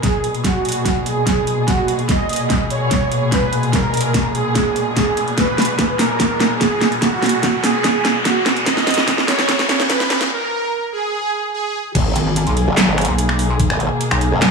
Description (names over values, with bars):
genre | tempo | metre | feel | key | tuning
heavy wobble dubstep | 146 BPM | 4/4 | half-time | G# minor | A4 = 442 Hz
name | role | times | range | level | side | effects
soft supersaw | melody | 0.0-11.8 s | F#4 to D#5 | -21 LUFS | right 3 dB | low-pass filter, dub echo
muted studio string section | sustained chords | 0.0-14.5 s | A#2 to G#4 | -23 LUFS | left 2 dB | sidechain pumping, low-pass filter
dubstep drum kit | drums | 0.0-14.5 s | crash cymbal, finger snaps, handclaps, hi-hat, snare drum | -18 LUFS | right 1 dB | studio ambience
electronic kick drum | drums | 0.0-13.7 s | none | -22 LUFS | left 1 dB | studio ambience
riser and impact | sound effects | 0.8-13.6 s | none | -25 LUFS | equal | none
formant-sweep wobble bass | bass | 12.0-14.5 s | F#1 to G#1 | -18 LUFS | equal | chorus, overdrive
pulsing pluck wobble bass | bass | 12.2-14.3 s | G#1 to B1 | -17 LUFS | equal | chorus, overdrive
room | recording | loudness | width
moderate plate reverb, RT60 1.9 s, digital ambience | high-pass filter, studio reverb | -15 LUFS | side -4 dB against mid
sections
0.0-12.0 A section; 12.0-14.5 B section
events
build-up 0.0-12.0; drum fill 0.0-10.3; filter sweep on supersaw synth 0.0-12.0; filter sweep 0.0-12.0; riser 0.8-10.3; break 10.3-12.0; drop 12.0-14.5; impact 12.0-13.6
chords
0.0 G#madd9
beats
0.03 | 0.44 0.85 1.27 1.68 | 2.09 2.50 2.91 3.32 | 3.73 4.14 4.55 4.96 | 5.38 5.79 6.20 6.61 | 7.02 7.43 7.84 8.25 | 8.66 9.07 9.48 9.90 | 10.31 10.72 11.13 11.54 | 11.95 12.36 12.77 13.18 | 13.60 14.01 14.42